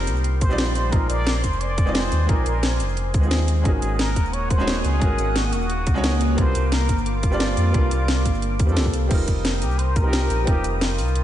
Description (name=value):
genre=liquid drum and bass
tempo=176 BPM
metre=4/4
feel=swing 54% on 16ths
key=F dorian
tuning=A4 = 439 Hz
part: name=trumpet with plunger mute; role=melody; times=0.0-11.2 s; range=F4 to D5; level=-29 LUFS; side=equal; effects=diffuse ambient delay
part: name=bright baby grand piano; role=accompaniment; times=0.0-11.2 s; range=G3 to D5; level=-27 LUFS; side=right 1 dB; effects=diffuse ambient delay
part: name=lush unison pad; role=sustained chords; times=0.0-11.2 s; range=Bb3 to Eb6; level=-30 LUFS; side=left 1 dB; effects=chorus
part: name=sub bass with octave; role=bass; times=0.0-11.2 s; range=Eb1 to F2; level=-22 LUFS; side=equal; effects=none
part: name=drum and bass drum kit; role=drums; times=0.1-11.2 s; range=crash cymbal, hi-hat, shaker, snare drum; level=-27 LUFS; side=equal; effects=overdrive, studio reverb
part: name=electronic kick drum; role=drums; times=0.4-10.5 s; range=none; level=-20 LUFS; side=equal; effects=overdrive, studio reverb
room=light reverb, digital ambience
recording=nothing above 10.5 kHz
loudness=-18 LUFS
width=side -12 dB against mid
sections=0.0-9.1 A section; 9.1-11.2 A section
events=drop 0.0-9.1, 9.1-11.2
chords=0.0 F9sus4; 0.9 Bb9sus4; 3.7 Ab9sus4; 6.4 C9sus4; 9.1 F9sus4